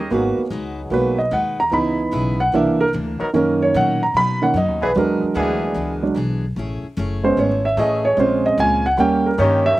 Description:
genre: jazz.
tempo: 149 BPM.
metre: 4/4.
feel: swing 67% on 8ths.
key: G# minor.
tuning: A4 = 443 Hz.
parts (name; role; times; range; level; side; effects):
upright bass; bass; 0.0-9.8 s; F#1 to B2; -25 LUFS; left 1 dB; none.
picked steel-string acoustic guitar; accompaniment; 0.1-9.8 s; A#2 to B4; -27 LUFS; left 3 dB; slapback echo.
warm concert grand piano; accompaniment; 0.1-9.8 s; D#3 to B5; -17 LUFS; right 2 dB; none.
clear trombone section; sustained chords; 0.1-9.8 s; D#3 to Bb4; -24 LUFS; left 1 dB; none.
room: little or no reverb.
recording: recorded outdoors, with no room sound.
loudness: -16 LUFS.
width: side -16 dB against mid.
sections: 0.1-9.8 A section.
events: grand piano solo 0.1-9.8.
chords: 0.1 G#m7; 1.7 C#m7; 2.5 C9; 3.3 Bmaj7; 5.0 E7; 6.6 Amaj7; 8.2 A#m7; 9.0 D#7.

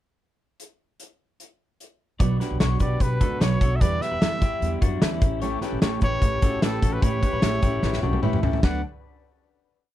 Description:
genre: jangly indie pop.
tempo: 149 BPM.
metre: 4/4.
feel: straight.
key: D major.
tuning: A4 = 440 Hz.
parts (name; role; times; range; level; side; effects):
loose indie drum kit; drums; 0.6-8.7 s; hi-hat, kick drum, snare drum, toms; -23 LUFS; equal; none.
fingerpicked steel-string acoustic guitar; accompaniment; 2.2-8.8 s; A2 to C#5; -30 LUFS; right 8 dB; none.
electric guitar through a small old amp; arpeggios; 2.2-8.8 s; C#4 to D5; -32 LUFS; left 8 dB; none.
upright bass; bass; 2.2-8.8 s; A1 to F#2; -27 LUFS; equal; none.
clear trumpet; melody; 2.8-8.8 s; A4 to F#5; -28 LUFS; equal; none.
combo organ; accompaniment; 5.4-8.8 s; C#4 to B4; -32 LUFS; left 10 dB; spring reverb.
room: little or no reverb.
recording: none.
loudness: -20 LUFS.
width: side -13 dB against mid.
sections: 0.6-2.2 pickup bar; 2.2-8.6 bridge; 8.6-9.9 final chord.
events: drum fill 7.8-8.6.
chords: 0.6 N.C.; 2.2 Bmadd9; 3.8 Em7; 5.2 A7; 8.6 D6.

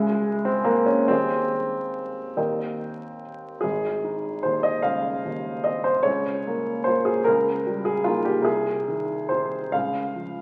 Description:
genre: classical, romantic character piece for solo piano.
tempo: 46-51 BPM (dotted quarters).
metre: 6/8.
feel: rubato.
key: Ab major.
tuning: A4 = 440 Hz.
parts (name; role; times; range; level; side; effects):
dark upright piano; solo; 0.0-10.4 s; Ab1 to Ab5; -24 LUFS; equal; none.
room: wet recital hall reverb, RT60 1.6 s.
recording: very old 78 rpm record, vinyl crackle.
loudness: -24 LUFS.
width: mono.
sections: 0.0-3.6 A section; 3.6-10.4 B section.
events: none.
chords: 0.0 Dbm; 1.1 Ab/Eb; 2.4 Eb; 3.6 Ab; 6.1 Bbm/Db; 7.3 Eb7/Db; 8.5 Ab/C; 9.7 Bbm/Db (rootless).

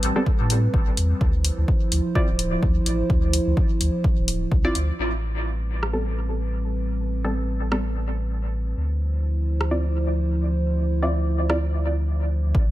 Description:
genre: dub techno.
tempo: 127 BPM.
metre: 4/4.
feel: swing 55% on 16ths.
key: unclear.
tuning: A4 = 440 Hz.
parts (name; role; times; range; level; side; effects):
dark analog pad; sustained chords; 0.0-12.7 s; F3 to C5; -29 LUFS; right 1 dB; chorus, sidechain pumping.
warm sub bass; bass; 0.0-12.7 s; D1 to A2; -23 LUFS; equal; sidechain pumping.
deep house drum kit; drums; 0.0-11.6 s; hi-hat, rim click; -28 LUFS; left 1 dB; low-pass filter on hats, low-pass filter on snare.
filtered dub chord stab; stabs; 0.2-11.6 s; G3 to D5; -29 LUFS; equal; chorus, phaser, sidechain pumping, dub echo.
electronic kick drum; drums; 0.3-4.6, 12.5-12.7 s; none; -22 LUFS; equal; none.
room: little or no reverb.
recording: none.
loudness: -20 LUFS.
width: side -15 dB against mid.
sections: 0.0-5.0 A section; 5.0-12.5 B section.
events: filter sweep on synth stab 5.0-12.5.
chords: 0.0 Am9; 1.2 Dm9; 5.0 Am9; 8.8 Dm9.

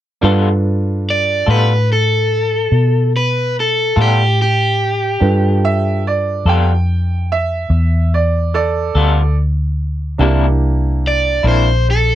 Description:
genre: slow blues.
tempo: 48 BPM (dotted quarters).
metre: 12/8.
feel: straight.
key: G mixolydian.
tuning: A4 = 440 Hz.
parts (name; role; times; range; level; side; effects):
electric guitar through a small old amp; accompaniment; 0.2-11.7 s; C3 to A4; -18 LUFS; left 4 dB; tremolo.
warm grand piano; accompaniment; 0.2-12.2 s; Bb3 to B4; -22 LUFS; right 5 dB; none.
vintage muted fingered electric bass; bass; 0.2-12.2 s; Bb1 to B2; -15 LUFS; equal; none.
crunchy overdriven guitar; melody; 1.1-12.2 s; G4 to D5; -16 LUFS; equal; none.
bright upright piano; second line; 5.6-9.3 s; A4 to G5; -19 LUFS; right 5 dB; none.
room: little or no reverb.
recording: none.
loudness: -13 LUFS.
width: side -12 dB against mid.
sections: 0.2-12.2 A section.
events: none.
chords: 0.2 G9; 10.2 C9.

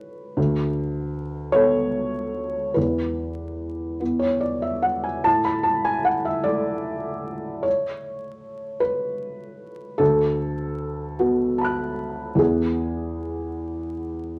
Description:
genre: neoclassical minimalist piano.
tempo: 46-52 BPM (dotted quarters).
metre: 6/8.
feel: rubato.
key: unclear.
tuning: A4 = 440 Hz.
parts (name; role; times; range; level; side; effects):
felt-muted upright piano; solo; 0.0-14.4 s; D2 to F#6; -24 LUFS; equal; none.
room: moderate studio reverb, RT60 0.8 s.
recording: vinyl crackle.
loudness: -24 LUFS.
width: mono.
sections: 0.0-14.4 A section.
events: none.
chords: 0.4 D5; 2.8 E5; 5.2 N.C.; 10.0 D6; 12.4 E.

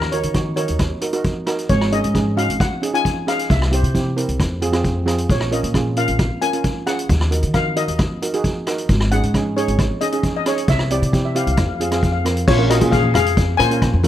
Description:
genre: calypso.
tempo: 134 BPM.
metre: 4/4.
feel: straight.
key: Bb minor.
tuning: A4 = 440 Hz.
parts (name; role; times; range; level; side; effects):
steel pan; melody; 0.0-14.1 s; F4 to Ab5; -22 LUFS; left 4 dB; none.
upright bass; bass; 0.0-14.1 s; Ab1 to Eb3; -20 LUFS; equal; none.
street-band drum kit; drums; 0.0-14.1 s; crash cymbal, hi-hat, kick drum, rim click; -21 LUFS; equal; none.
steel pan; accompaniment; 0.1-14.1 s; C4 to Db5; -23 LUFS; right 3 dB; none.
congas; percussion; 12.8-14.1 s; none; -23 LUFS; left 3 dB; none.
room: little or no reverb.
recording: close, detailed microphones.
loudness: -16 LUFS.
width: side -12 dB against mid.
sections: 0.0-12.5 A section; 12.5-14.1 B section.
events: none.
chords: 0.0 Ebm7; 1.7 Ab7sus4; 3.5 C7; 4.4 Fm; 5.3 Bbm; 7.1 Ebm; 8.9 Ab7sus4; 10.7 C; 11.6 Fm; 12.5 Bbm7.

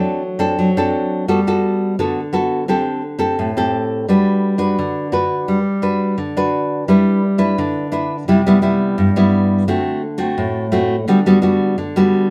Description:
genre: samba.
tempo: 86 BPM.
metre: 4/4.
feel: straight.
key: G major.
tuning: A4 = 440 Hz.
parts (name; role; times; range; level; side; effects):
nylon-string guitar; solo; 0.0-12.3 s; G2 to B4; -17 LUFS; equal; none.
room: wet studio reverb, RT60 0.8 s.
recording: band playing live in one room.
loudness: -17 LUFS.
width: mono.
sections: 0.0-6.9 A section; 6.9-12.3 B section.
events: none.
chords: 0.0 D7/F#; 1.3 Gmaj9; 2.7 D7sus4; 4.1 Gmaj7; 6.9 G6; 8.3 Cmaj7; 9.7 D7; 11.1 Gmaj7/D.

